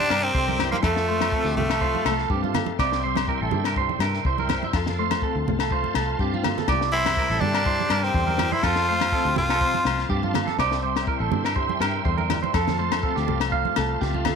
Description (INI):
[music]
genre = highlife guitar band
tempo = 123 BPM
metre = 4/4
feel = swing 53% on 16ths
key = C mixolydian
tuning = A4 = 440 Hz
[part]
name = raspy tenor saxophone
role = melody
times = 0.0-2.3, 6.9-10.1 s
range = A3 to F4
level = -24 LUFS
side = equal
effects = none
[part]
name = brilliant trumpet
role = second line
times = 0.0-2.3, 6.9-10.1 s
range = F4 to C5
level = -33 LUFS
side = left 13 dB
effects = none
[part]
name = flamenco guitar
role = accompaniment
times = 0.0-14.4 s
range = C3 to C5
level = -31 LUFS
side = left 14 dB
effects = none
[part]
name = bright tonewheel organ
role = sustained chords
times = 0.0-14.4 s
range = E5 to C6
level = -35 LUFS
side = equal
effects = slow rotary speaker, chorus vibrato
[part]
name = clean electric guitar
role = arpeggios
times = 0.0-14.4 s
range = F4 to F5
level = -27 LUFS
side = right 14 dB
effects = spring reverb, tape echo
[part]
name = fingered electric bass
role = bass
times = 0.1-14.4 s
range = A1 to G2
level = -28 LUFS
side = equal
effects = none
[part]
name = compact cocktail drum kit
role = drums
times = 0.1-14.4 s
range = kick drum, snare drum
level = -29 LUFS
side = left 4 dB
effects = none
[part]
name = agogo bells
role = percussion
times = 0.1-14.4 s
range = none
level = -31 LUFS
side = left 16 dB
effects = none
[part]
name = congas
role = percussion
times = 0.5-14.4 s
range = none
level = -30 LUFS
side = right 11 dB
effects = none
[sound]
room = light reverb, small room ambience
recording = 1960s-style stereo with parts hard left and right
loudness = -21 LUFS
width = side -6 dB against mid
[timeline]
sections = 0.0-14.4 A section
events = drum fill 6.3-6.7, 14.0-14.4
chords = 0.0 C; 0.8 F; 2.8 C; 4.7 F; 6.7 C; 8.6 F; 10.6 C; 12.5 F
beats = 0.35 | 0.84 1.33 1.82 2.30 | 2.79 3.28 3.77 4.25 | 4.74 5.22 5.71 6.20 | 6.69 7.17 7.66 8.15 | 8.64 9.12 9.61 10.10 | 10.59 11.08 11.56 12.05 | 12.54 13.03 13.52 14.01